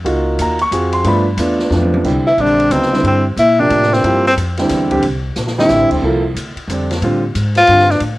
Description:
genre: modal jazz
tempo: 181 BPM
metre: 3/4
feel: swing 63% on 8ths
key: C mixolydian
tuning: A4 = 440 Hz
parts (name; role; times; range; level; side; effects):
- warm grand piano; accompaniment; 0.0-7.9 s; C3 to Db6; -16 LUFS; right 1 dB; cassette tape, plate reverb
- upright bass; bass; 0.0-8.2 s; E1 to Bb2; -19 LUFS; equal; none
- open jazz drum kit; drums; 0.1-8.1 s; crash cymbal, hi-hat, kick drum, ride cymbal, snare drum, toms; -25 LUFS; equal; none
- clear tenor saxophone; melody; 2.3-8.0 s; C4 to F4; -12 LUFS; left 1 dB; cassette tape, plate reverb
room: moderate small room reverb, RT60 0.6 s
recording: home recording on cassette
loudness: -12 LUFS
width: side -18 dB against mid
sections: 0.0-2.0 A section; 2.0-8.2 A section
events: drum fill 1.7-2.0, 5.4-5.7; tenor saxophone solo 2.0-8.2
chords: 0.0 Bbm; 1.1 G7; 2.0 C9; 6.0 Dm/C

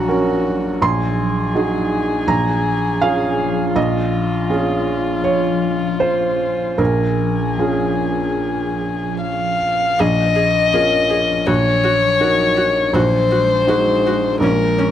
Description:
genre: neoclassical piano and strings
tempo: 72-83 BPM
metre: 4/4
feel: rubato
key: Bb minor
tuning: A4 = 440 Hz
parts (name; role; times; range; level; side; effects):
- dark violin; melody; 0.0-14.9 s; F4 to F5; -19 LUFS; left 4 dB; plate reverb, analog delay
- felt-muted upright piano; accompaniment; 0.0-14.9 s; Bb1 to C6; -18 LUFS; right 2 dB; plate reverb
- glassy FM pad; sustained chords; 0.0-14.9 s; F3 to Eb5; -26 LUFS; left 2 dB; ensemble chorus, built-in reverb
- warm viola; accompaniment; 10.0-14.9 s; Db4 to Ab4; -25 LUFS; right 2 dB; plate reverb
room: moderate studio reverb, RT60 0.6 s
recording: cassette tape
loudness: -15 LUFS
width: side -10 dB against mid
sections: 0.0-10.0 A section; 10.0-14.9 A section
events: none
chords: 0.0 Ebm7/Bb; 0.8 Ab7/Bb; 2.3 Bbm7; 11.5 Ebm7/Bb; 12.9 Ab7/Bb; 14.4 Bbm7

